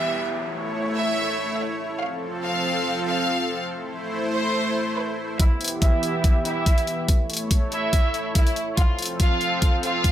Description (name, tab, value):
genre	heavy wobble dubstep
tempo	142 BPM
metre	4/4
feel	swing 54% on 16ths, half-time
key	unclear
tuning	A4 = 440 Hz
part	bright studio violin section	melody	0.0-10.1 s	E4 to F5	-26 LUFS	right 1 dB	low-pass filter, dub echo
part	supersaw pad	sustained chords	0.0-10.1 s	E3 to C#5	-27 LUFS	equal	sidechain pumping, low-pass filter
part	downlifter	sound effects	0.0-2.0 s	none	-35 LUFS	equal	none
part	electronic hi-hat	drums	5.4-10.1 s	none	-29 LUFS	left 2 dB	overdrive, low-pass filter on snare, studio reverb, low-pass filter on hats
part	electronic kick drum	drums	5.4-10.1 s	none	-19 LUFS	equal	overdrive, studio reverb
room	light reverb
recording	none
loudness	-21 LUFS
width	side -11 dB against mid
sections	0.0-5.4 A section; 5.4-10.1 B section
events	build-up 5.4-10.1; filter sweep on supersaw synth 5.4-10.1; filter sweep on violin section 5.4-10.1; filter sweep 5.4-10.1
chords	0.3 A; 2.0 F; 3.7 Am; 5.4 Em; 7.1 A; 8.8 F